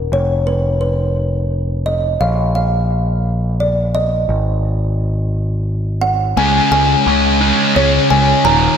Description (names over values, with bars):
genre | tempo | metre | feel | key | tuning
post-rock | 86 BPM | 3/4 | straight | unclear | A4 = 440 Hz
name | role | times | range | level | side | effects
kalimba | melody | 0.0-8.8 s | Cb5 to Bb5 | -17 LUFS | right 1 dB | slapback echo, analog delay
growling picked electric bass | bass | 0.0-8.7 s | Eb1 to Db2 | -17 LUFS | equal | overdrive
sludgy distorted guitar | riff | 6.4-8.8 s | Eb2 to Db4 | -14 LUFS | left 1 dB | overdrive
room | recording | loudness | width
moderate lush hall reverb, RT60 1.9 s | big arena sound | -13 LUFS | side -7 dB against mid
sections
0.0-6.4 A section; 6.4-8.8 B section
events
build-up 6.4-8.8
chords
0.1 Db7/F (rootless); 2.2 Bb5; 4.3 Ab5; 6.4 Db5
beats
| 0.12 0.81 1.51 | 2.20 2.90 3.59 | 4.29 4.98 5.68 | 6.37 7.07 7.76 | 8.45